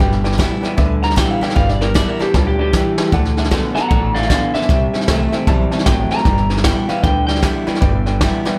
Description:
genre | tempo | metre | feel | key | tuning
rockabilly | 154 BPM | 4/4 | swing 63% on 8ths | G major | A4 = 440 Hz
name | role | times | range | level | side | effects
picked steel-string acoustic guitar | accompaniment | 0.0-8.6 s | C3 to F#4 | -27 LUFS | equal | none
warm upright piano | accompaniment | 0.0-8.5 s | A4 to A5 | -29 LUFS | equal | plate reverb
electric guitar through a small old amp | riff | 0.0-8.6 s | G2 to B3 | -24 LUFS | equal | spring reverb
upright bass | bass | 0.0-8.5 s | G1 to D2 | -22 LUFS | equal | none
vintage brush drum kit | drums | 0.0-8.5 s | hi-hat, kick drum, snare drum | -20 LUFS | equal | none
electric guitar through a small old amp | melody | 1.0-7.4 s | F4 to Bb5 | -24 LUFS | equal | analog delay
room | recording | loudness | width
light reverb | none | -16 LUFS | mono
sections
0.0-8.6 A section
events
clean electric guitar solo 0.0-8.6; drum fill 2.3-3.1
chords
0.0 G6; 3.1 D6; 4.7 C6; 6.3 G6

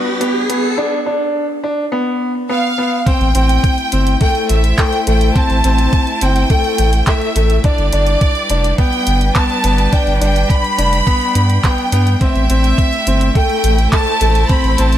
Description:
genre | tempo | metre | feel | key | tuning
piano and strings electronica | 105 BPM | 4/4 | straight | A minor | A4 = 440 Hz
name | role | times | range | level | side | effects
rich string quartet | sustained chords | 0.0-15.0 s | G3 to G5 | -24 LUFS | equal | sidechain pumping
clear upright piano | riff | 0.0-15.0 s | A3 to D4 | -18 LUFS | left 1 dB | none
riser | sound effects | 0.0-0.8 s | none | -21 LUFS | right 2 dB | none
deep house drum kit | drums | 0.2-15.0 s | handclaps, hi-hat | -24 LUFS | right 1 dB | overdrive, small room ambience
bright symphonic violin section | melody | 2.5-15.0 s | D5 to B5 | -18 LUFS | right 1 dB | none
electronic kick drum | drums | 3.1-14.6 s | none | -14 LUFS | equal | small room ambience
round analog bass | bass | 3.2-15.0 s | F1 to G2 | -14 LUFS | equal | sidechain pumping
room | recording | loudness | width
light reverb, small room ambience | none | -12 LUFS | side -11 dB against mid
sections
0.0-3.1 A section; 3.1-15.0 B section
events
build-up 0.0-3.1; riser 0.0-0.8; drop 3.1-15.0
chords
0.0 G; 3.1 Am7; 7.6 G; 12.2 Am7

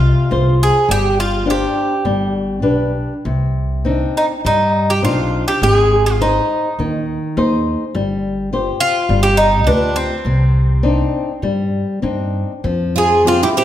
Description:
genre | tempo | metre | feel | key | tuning
fado-style ballad | 102 BPM | 4/4 | uneven beats, rubato | C harmonic minor | A4 = 440 Hz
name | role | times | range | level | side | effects
Irish bouzouki | melody | 0.0-13.6 s | C4 to Ab4 | -16 LUFS | right 1 dB | tape echo
flamenco guitar | accompaniment | 0.0-13.6 s | C3 to C5 | -19 LUFS | left 2 dB | none
upright bass | bass | 0.0-13.4 s | G1 to G2 | -18 LUFS | equal | none
picked twelve-string acoustic guitar | second line | 13.0-13.6 s | C4 to F4 | -18 LUFS | right 5 dB | none
room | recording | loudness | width
wet recital hall reverb, RT60 1.3 s | none | -14 LUFS | side -11 dB against mid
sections
0.0-12.6 A section; 12.6-13.6 B section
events
none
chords
0.0 Fm; 0.9 Gsus4; 2.0 G; 3.3 Cmadd9; 5.6 Ab; 7.9 G7sus4; 9.1 G7; 10.2 Cmadd9; 12.6 Fmadd9

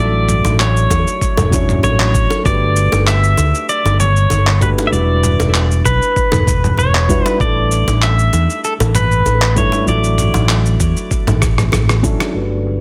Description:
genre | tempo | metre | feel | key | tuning
sunset chillout | 97 BPM | 4/4 | swing 53% on 16ths | D major | A4 = 440 Hz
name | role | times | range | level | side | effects
pedal steel guitar | melody | 0.0-11.7 s | A4 to E5 | -21 LUFS | equal | delay
dark grand piano | accompaniment | 0.0-12.8 s | F#3 to C#5 | -24 LUFS | equal | low-pass filter, tape echo
mellow fretless electric bass | bass | 0.0-12.8 s | E1 to E2 | -17 LUFS | equal | none
dusty soul sampler-style drum kit | drums | 0.3-12.8 s | handclaps, rim click, shaker, toms | -21 LUFS | equal | overdrive, low-pass filter on perc, low-pass filter on toms, low-pass filter on snare, low-pass filter on room
bongos | percussion | 0.4-12.3 s | none | -26 LUFS | equal | none
electronic kick drum | drums | 0.9-12.2 s | none | -21 LUFS | equal | overdrive
room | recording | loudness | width
light reverb, digital ambience | dense, heavily limited modern master | -14 LUFS | mono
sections
0.0-12.3 A section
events
drum fill 11.4-12.3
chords
0.0 Dmaj9/A; 2.5 Gmaj9; 4.9 Em9; 7.4 A7sus4; 9.9 Dmaj9/A

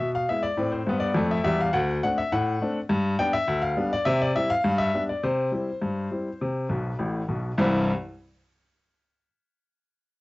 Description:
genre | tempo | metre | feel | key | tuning
ragtime piano | 103 BPM | 2/4 | straight | C major | A4 = 440 Hz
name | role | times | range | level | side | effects
warm upright piano | solo | 0.0-7.9 s | A1 to G5 | -23 LUFS | left 1 dB | cassette tape
room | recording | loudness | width
light reverb | home recording on cassette, nothing above 7.7 kHz | -23 LUFS | side -20 dB against mid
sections
0.0-7.6 A section; 7.6-8.7 B section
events
upright piano fill 6.7-7.6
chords
0.0 E; 0.6 Am; 1.7 D7; 2.9 G; 4.1 C; 4.6 G; 5.2 C

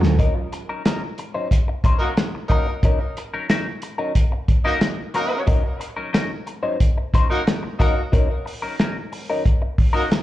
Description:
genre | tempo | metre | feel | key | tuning
funk | 91 BPM | 4/4 | straight | Eb dorian | A4 = 440 Hz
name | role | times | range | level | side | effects
clean electric guitar | accompaniment | 0.0-10.1 s | Gb3 to C5 | -26 LUFS | left 3 dB | wah, slapback echo
warm soul drum kit | drums | 0.0-10.2 s | hi-hat, kick drum, snare drum | -19 LUFS | equal | none
mellow horn section | second line | 2.0-10.1 s | Bb3 to Bb4 | -27 LUFS | equal | tape echo, slapback echo
room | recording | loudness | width
small room reverb | live gig heard through the venue's PA, cassette tape, club reverb | -19 LUFS | side -14 dB against mid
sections
0.2-10.2 A section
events
drum fill 0.0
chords
0.2 Ebm7

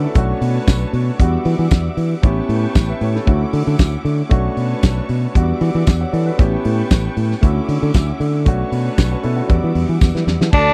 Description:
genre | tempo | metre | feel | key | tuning
disco | 116 BPM | 4/4 | straight | unclear | A4 = 440 Hz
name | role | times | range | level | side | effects
warm concert grand piano | accompaniment | 0.0-10.5 s | G3 to F#5 | -25 LUFS | equal | none
clear studio string section | sustained chords | 0.0-10.7 s | D3 to D6 | -33 LUFS | equal | none
fingered electric bass | bass | 0.0-10.7 s | A1 to E3 | -20 LUFS | equal | none
warm soul drum kit | drums | 0.1-10.7 s | crash cymbal, hi-hat, kick drum, snare drum | -16 LUFS | equal | none
tambourine | percussion | 0.7-10.1 s | none | -36 LUFS | equal | none
breathy tenor saxophone | melody | 10.5-10.7 s | D4 | -15 LUFS | equal | none
warm studio violin section | second line | 10.5-10.7 s | A4 to A5 | -20 LUFS | equal | none
room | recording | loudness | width
little or no reverb | dry, close 1970s-style studio recording | -17 LUFS | mono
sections
0.0-10.5 A section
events
drum fill 10.0-10.5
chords
0.2 Bm9; 1.2 Em9; 2.2 A9; 3.3 Dmaj9; 4.3 Bm9; 5.4 Em9; 6.4 A9; 7.4 Dmaj9; 8.5 Bm9; 9.5 Em9

